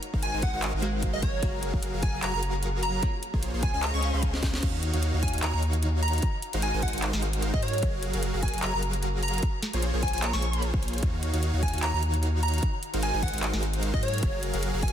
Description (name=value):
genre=future bass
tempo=150 BPM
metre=4/4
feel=swing 55% on 16ths, half-time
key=Gb lydian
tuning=A4 = 441 Hz
part: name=trap drum kit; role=drums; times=0.0-14.9 s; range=crash cymbal, handclaps, hi-hat, snare drum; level=-34 LUFS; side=equal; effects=none
part: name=supersaw chords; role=riff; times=0.1-14.9 s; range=Eb3 to Bb5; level=-32 LUFS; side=right 1 dB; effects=sidechain pumping
part: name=saturated sub bass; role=bass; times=0.1-14.9 s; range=Gb1 to Ab2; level=-29 LUFS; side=equal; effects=sidechain pumping
part: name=electronic kick drum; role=drums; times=0.1-14.9 s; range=none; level=-28 LUFS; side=equal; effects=none
part: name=plucky unison lead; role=melody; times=0.2-14.9 s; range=Db5 to Db6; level=-33 LUFS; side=equal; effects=lush chorus, sidechain pumping, ping-pong delay
part: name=glassy digital keys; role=accompaniment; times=0.8-4.6 s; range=Ab3 to Bb5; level=-37 LUFS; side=left 1 dB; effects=chorus, sidechain pumping, tape echo
room=light reverb, digital ambience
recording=dense, heavily limited modern master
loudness=-25 LUFS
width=side -10 dB against mid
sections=0.0-4.6 A section; 4.6-14.9 A section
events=drop 0.0-4.6, 4.6-14.9; drum fill 4.3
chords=0.0 Ab13; 1.2 Gbmaj7; 3.0 Bbm7; 3.8 Dbmaj9; 4.6 Ebm7; 6.2 Ab13; 7.6 Gbmaj7; 9.4 Bbm7; 11.0 Ebm7; 12.6 Ab13; 14.0 Gbmaj7